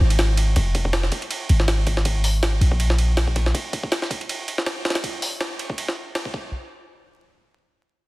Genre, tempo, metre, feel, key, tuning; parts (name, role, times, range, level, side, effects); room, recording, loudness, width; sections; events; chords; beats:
drum and bass, jungle; 161 BPM; 4/4; swing 55% on 16ths; F minor; A4 = 440 Hz
warm 808-style bass; bass; 0.0-3.5 s; F1 to Bb1; -18 LUFS; equal; tube saturation
jungle sampler-style drum kit; drums; 0.1-6.4 s; hi-hat, kick drum, ride cymbal, snare drum; -24 LUFS; equal; high-pass filter on snare, studio reverb, high-pass filter on cymbals, high-pass filter on kick, high-pass filter on hats
little or no reverb; dense, heavily limited modern master, vinyl crackle; -20 LUFS; side -20 dB against mid
0.6-6.5 A section; 6.5-8.1 B section
0.19 | 0.56 0.93 1.30 1.68 | 2.05 2.42 2.79 3.17 | 3.54 3.91 4.29 4.66 | 5.03 5.40 5.78 6.15